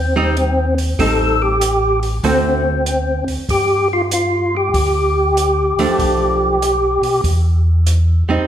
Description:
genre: soul jazz organ trio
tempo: 96 BPM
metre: 4/4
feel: swing 67% on 8ths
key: unclear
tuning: A4 = 440 Hz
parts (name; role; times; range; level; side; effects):
- percussive tonewheel organ; melody; 0.0-7.2 s; C4 to A4; -16 LUFS; left 1 dB; slow rotary speaker, overdrive, chorus vibrato
- mellow tonewheel organ; bass; 0.0-8.4 s; A1 to B2; -18 LUFS; equal; slow rotary speaker
- archtop guitar, miked and amplified; accompaniment; 0.2-8.5 s; D3 to F#4; -19 LUFS; right 4 dB; none
- open jazz drum kit; drums; 0.4-8.1 s; hi-hat, kick drum; -25 LUFS; right 1 dB; none
room: wet recital hall reverb, RT60 1.4 s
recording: recorded in a church or concert hall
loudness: -14 LUFS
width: side -10 dB against mid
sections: 0.0-8.5 A section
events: none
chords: 0.0 Abmaj7 (rootless); 1.0 Am7b5; 2.2 D7; 3.5 G5; 6.0 Bm7b5; 7.2 Emmaj7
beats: 0.37 | 0.99 1.61 2.24 2.86 | 3.49 4.11 4.74 5.36 | 5.98 6.61 7.23 7.86

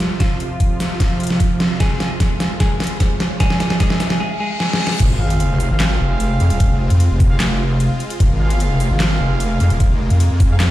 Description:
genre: heavy wobble dubstep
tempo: 150 BPM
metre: 4/4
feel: half-time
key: F minor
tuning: A4 = 440 Hz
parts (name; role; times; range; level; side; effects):
- clean electric guitar; melody; 0.0-5.0 s; F3 to Ab4; -24 LUFS; right 1 dB; ping-pong delay
- supersaw chords; sustained chords; 0.0-10.7 s; F2 to F4; -27 LUFS; right 1 dB; sidechain pumping, low-pass filter
- dubstep drum kit; drums; 0.0-10.7 s; crash cymbal, handclaps, hi-hat, snare drum; -21 LUFS; equal; overdrive
- riser, reverse cymbal and sub drop; sound effects; 1.4-6.6 s; none; -29 LUFS; left 1 dB; none
- electronic kick drum; drums; 0.2-10.5 s; none; -16 LUFS; equal; none
- wobble bass; bass; 5.0-10.7 s; Eb1 to F2; -15 LUFS; equal; chorus, overdrive
- warm brass ensemble; stabs; 5.2-10.6 s; C4 to F5; -27 LUFS; right 3 dB; vintage 12-bit sampler grit, ping-pong delay
room: light reverb, digital ambience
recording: played on a big sound system in a bare room, stone room reverb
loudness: -14 LUFS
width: side -14 dB against mid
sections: 0.0-5.0 A section; 5.0-10.7 B section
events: build-up 0.0-5.0; drum fill 0.0-4.2, 4.6-5.0; riser 1.4-4.2; break 4.2-5.0; reverse cymbal 4.2-5.0; drop 5.0-10.7; impact 5.0-6.6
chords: 0.0 Fm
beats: | 0.20 0.60 1.00 1.40 | 1.80 2.20 2.60 3.00 | 3.40 3.80 4.20 4.60 | 5.00 5.40 5.80 6.20 | 6.60 7.00 7.40 7.80 | 8.20 8.60 9.00 9.40 | 9.80 10.20 10.60

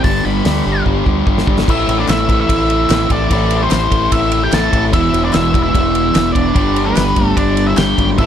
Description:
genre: classic rock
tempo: 147 BPM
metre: 4/4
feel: straight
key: A minor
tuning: A4 = 440 Hz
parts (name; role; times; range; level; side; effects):
- octave-fuzz lead guitar; melody; 0.0-8.3 s; B4 to B5; -19 LUFS; equal; distortion, slapback echo
- crunchy overdriven guitar; riff; 0.0-8.3 s; E2 to A3; -20 LUFS; right 13 dB; none
- sludgy distorted guitar; riff; 0.0-8.3 s; E2 to A4; -19 LUFS; left 13 dB; overdrive
- growling fingered electric bass; bass; 0.0-8.3 s; E1 to D2; -19 LUFS; equal; overdrive
- damped 70s drum kit; drums; 0.0-8.3 s; crash cymbal, hi-hat, kick drum, ride cymbal, snare drum; -18 LUFS; equal; none
- fuzz lead guitar; second line; 1.7-8.3 s; B3 to A4; -22 LUFS; right 4 dB; distortion, slapback echo
- group handclap; percussion; 2.1-7.9 s; none; -28 LUFS; left 11 dB; none
room: light reverb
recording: none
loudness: -12 LUFS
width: side -9 dB against mid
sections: 0.0-1.7 A section; 1.7-8.3 B section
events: drum fill 0.9-1.7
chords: 0.0 G; 1.7 Am; 4.9 E; 6.6 G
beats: | 0.04 0.45 0.85 1.26 | 1.67 2.08 2.48 2.89 | 3.30 3.70 4.11 4.52 | 4.92 5.33 5.74 6.15 | 6.55 6.96 7.37 7.78 | 8.19

